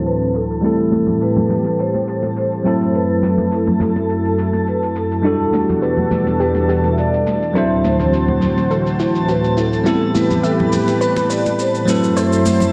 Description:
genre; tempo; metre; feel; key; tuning
sunset chillout; 104 BPM; 4/4; swing 54% on 16ths; unclear; A4 = 445 Hz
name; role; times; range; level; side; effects
vibraphone with soft mallets; melody; 0.0-12.7 s; G4 to E5; -24 LUFS; equal; tape echo
bell-like tine electric piano; accompaniment; 0.0-12.7 s; F#3 to C5; -22 LUFS; equal; low-pass filter, tape echo
lush unison pad; sustained chords; 0.0-12.7 s; D2 to C5; -22 LUFS; equal; chorus
twinkling granular texture; texture; 0.0-12.7 s; A5; -33 LUFS; equal; built-in reverb, lush chorus
shaker; drums; 0.1-12.7 s; none; -37 LUFS; equal; low-pass filter on perc, low-pass filter on room
congas; percussion; 0.9-12.7 s; none; -25 LUFS; equal; none
soft round pluck; arpeggios; 5.2-12.4 s; D4 to E5; -27 LUFS; equal; lush chorus, cassette tape, tape echo
room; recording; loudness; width
wet plate reverb, RT60 1.1 s, digital ambience; dreamy mix soaked in reverb, low-pass filter; -17 LUFS; mono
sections
0.0-12.7 A section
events
filter sweep on drum 0.0-12.7; filter sweep on tine electric piano 0.0-12.7; filter sweep on analog synth pad 0.0-12.7; filter sweep 0.0-12.7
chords
0.0 D9; 0.6 Am9; 2.7 F#m7b5; 5.2 Em11; 7.6 D9; 9.9 Am9; 11.9 F#m7b5

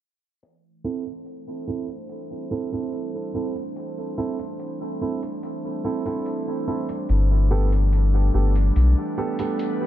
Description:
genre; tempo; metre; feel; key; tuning
ambient dub; 72 BPM; 4/4; straight; A minor; A4 = 440 Hz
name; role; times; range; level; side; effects
airy breathy pad; sustained chords; 1.1-9.9 s; E3 to C5; -31 LUFS; equal; chorus
electronic hi-hat; drums; 0.4-9.8 s; none; -52 LUFS; left 2 dB; dub echo
dark upright piano; stabs; 0.8-9.9 s; B3 to A4; -28 LUFS; right 4 dB; low-pass filter, dub echo
soft dub sub bass; bass; 7.1-8.9 s; G1 to B1; -17 LUFS; left 1 dB; none
room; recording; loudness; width
light reverb; dark, warm production, low-pass filter, nothing above 10.6 kHz; -22 LUFS; side -13 dB against mid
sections
0.4-9.9 A section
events
fade-in on analog synth pad 0.4-9.9; filter sweep on upright piano 0.4-9.9; filter sweep 0.4-9.9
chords
0.4 Am; 7.1 Gadd9

